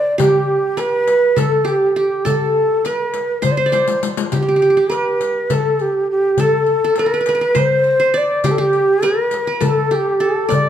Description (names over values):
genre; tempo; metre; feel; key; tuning
Turkish makam ensemble; 204 BPM (eighths); 7/8; straight; unclear; A4 = 439 Hz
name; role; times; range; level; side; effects
breathy reedy ney; melody; 0.0-10.7 s; G4 to D5; -15 LUFS; equal; none
qanun; second line; 0.0-10.7 s; G4 to D5; -22 LUFS; right 2 dB; none
darbuka; percussion; 0.2-10.6 s; none; -22 LUFS; left 3 dB; none
riq; percussion; 0.2-10.6 s; none; -27 LUFS; left 7 dB; none
room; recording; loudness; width
wet recital hall reverb, RT60 1.4 s; minimal, uncompressed stereo recording; -14 LUFS; side -10 dB against mid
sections
0.0-10.7 A section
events
drum fill 3.7-4.3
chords
none